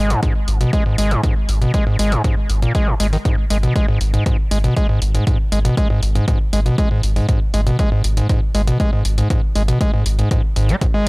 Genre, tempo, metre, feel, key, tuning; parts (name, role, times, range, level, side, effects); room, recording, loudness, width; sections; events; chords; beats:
acid house; 119 BPM; 4/4; straight; G# minor; A4 = 440 Hz
overdriven acid bass; riff; 0.0-11.1 s; G#2 to G#3; -19 LUFS; equal; tape echo
round analog bass; bass; 0.0-10.7 s; G#1; -17 LUFS; equal; sidechain pumping
electronic hi-hat; drums; 0.1-10.9 s; -28 LUFS; left 1 dB
electronic kick drum; drums; 0.2-10.9 s; -18 LUFS; equal
little or no reverb; dry, gritty hardware recording, transformer saturation; -15 LUFS; side -27 dB against mid
0.0-11.1 A section
0.0 G#5
0.23 0.73 | 1.24 1.74 2.24 2.75 | 3.25 3.76 4.26 4.76 | 5.27 5.77 6.28 6.78 | 7.29 7.79 8.29 8.80 | 9.30 9.81 10.31 10.81